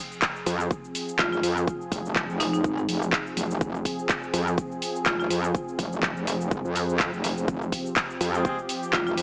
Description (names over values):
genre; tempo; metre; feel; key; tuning
bass house; 124 BPM; 4/4; swing 56% on 16ths; F minor; A4 = 441 Hz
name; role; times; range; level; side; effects
sweeping resonant pad; sustained chords; 0.0-9.2 s; F3 to Ab4; -35 LUFS; equal; chorus, sidechain pumping
house drum kit; drums; 0.1-9.2 s; handclaps, hi-hat, shaker; -31 LUFS; equal; none
electronic kick drum; drums; 0.2-9.0 s; none; -32 LUFS; equal; overdrive
metallic wobble bass; bass; 0.5-9.2 s; F1 to F2; -30 LUFS; equal; chorus, tube saturation, sidechain pumping
marimba with hard mallets; melody; 1.2-5.3, 8.9-9.1 s; Eb4 to F4; -32 LUFS; equal; none
clear horn section; stabs; 8.3-8.6 s; Ab3 to Ab4; -38 LUFS; equal; sidechain pumping, dub echo
room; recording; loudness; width
light reverb, digital ambience; small speaker sound; -27 LUFS; mono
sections
0.0-9.2 A section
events
none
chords
0.0 Fm